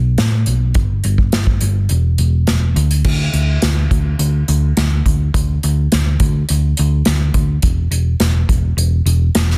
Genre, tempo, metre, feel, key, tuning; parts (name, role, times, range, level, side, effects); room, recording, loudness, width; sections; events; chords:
indie rock; 105 BPM; 4/4; straight; A4 = 440 Hz
hollow-body short-scale picked electric bass; bass; 0.0-9.6 s; E1 to A2; -17 LUFS; equal
unplugged drum kit; drums; 0.2-9.6 s; crash cymbal, hi-hat, kick drum, snare drum; -20 LUFS; equal
little or no reverb; dense, heavily limited modern master; -16 LUFS; mono
0.0-3.0 A section; 3.0-9.6 B section